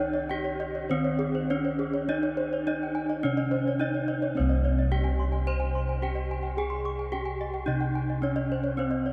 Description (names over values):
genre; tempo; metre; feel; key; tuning
Balinese gamelan; 108 BPM; 4/4; uneven beats; C pelog; A4 = 440 Hz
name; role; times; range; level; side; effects
gamelan-type bronze metallophone; melody; 0.0-9.1 s; C4 to C5; -33 LUFS; equal; none
gamelan-type bronze metallophone; arpeggios; 0.0-9.1 s; Ab4-20c to C6; -37 LUFS; equal; none
gamelan-type bossed gongs; bass; 0.0-9.1 s; C2 to Ab4-20c; -32 LUFS; equal; none
gamelan-type bronze metallophone; arpeggios; 0.1-9.1 s; C5 to Db6+20c; -38 LUFS; equal; none
room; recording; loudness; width
moderate huge ambient reverb, RT60 8.8 s; in a vast, echoing space; -28 LUFS; mono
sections
0.0-4.4 A section; 4.4-9.1 B section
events
none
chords
none